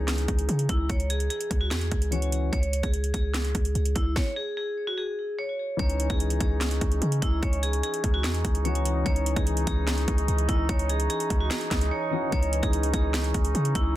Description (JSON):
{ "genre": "hip hop, trap", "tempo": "147 BPM", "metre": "4/4", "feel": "half-time", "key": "C# minor", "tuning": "A4 = 440 Hz", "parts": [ { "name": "vibraphone with hard mallets", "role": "melody", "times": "0.0-13.9 s", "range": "E4 to C#5", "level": "-32 LUFS", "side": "equal", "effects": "low-pass filter, ping-pong delay" }, { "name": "dark concert grand piano", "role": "accompaniment", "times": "0.0-2.6, 5.8-14.0 s", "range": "E3 to F#4", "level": "-35 LUFS", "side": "left 6 dB", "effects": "low-pass filter" }, { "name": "warm 808-style bass", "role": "bass", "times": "0.0-13.9 s", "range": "C#2 to C#3", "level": "-26 LUFS", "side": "equal", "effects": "none" }, { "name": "trap drum kit", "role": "drums", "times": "0.1-13.8 s", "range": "handclaps, hi-hat, kick drum, snare drum", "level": "-28 LUFS", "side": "equal", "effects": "overdrive" }, { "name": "mellow brass ensemble", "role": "sustained chords", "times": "5.8-14.0 s", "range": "E3 to D#4", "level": "-33 LUFS", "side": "right 2 dB", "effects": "none" } ], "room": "small room ambience", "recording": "dense, heavily limited modern master", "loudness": "-24 LUFS", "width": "side -14 dB against mid", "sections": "0.0-5.8 A section; 5.8-14.0 B section", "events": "stop 4.2-5.8; drums muted 11.9-12.3", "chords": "0.0 C#madd9; 2.5 C#5; 5.8 C#madd9" }